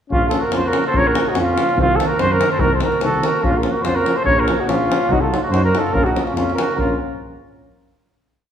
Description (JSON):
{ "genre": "balkan folk, Balkan brass band", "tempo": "145 BPM", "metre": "2/4", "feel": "swing 54% on 16ths", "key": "Bb harmonic minor", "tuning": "A4 = 439 Hz", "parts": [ { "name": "warm flugelhorn", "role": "melody", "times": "0.1-6.9 s", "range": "F4 to Db5", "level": "-19 LUFS", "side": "right 1 dB", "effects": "none" }, { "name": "warm trumpet", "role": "second line", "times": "0.1-7.0 s", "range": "C4 to Bb4", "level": "-25 LUFS", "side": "right 3 dB", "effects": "none" }, { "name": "clear trombone", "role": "accompaniment", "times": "0.1-7.0 s", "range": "Eb3 to Gb3", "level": "-27 LUFS", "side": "right 3 dB", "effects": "none" }, { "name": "warm euphonium", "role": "accompaniment", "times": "0.1-7.0 s", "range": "C4 to Eb4", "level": "-25 LUFS", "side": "left 3 dB", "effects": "none" }, { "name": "mellow tuba", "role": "bass", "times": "0.1-6.9 s", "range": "Bb1 to Gb2", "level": "-23 LUFS", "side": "equal", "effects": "none" }, { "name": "davul", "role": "percussion", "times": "0.1-7.0 s", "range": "none", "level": "-23 LUFS", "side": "left 1 dB", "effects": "none" } ], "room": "wet large studio reverb, RT60 1.4 s", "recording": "band playing live in one room", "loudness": "-15 LUFS", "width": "side -9 dB against mid", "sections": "0.1-6.7 A section; 6.7-7.6 final chord", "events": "none", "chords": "0.1 Bbm; 1.8 Cdim; 3.4 Bbm; 5.1 Cdim; 5.9 Bbm" }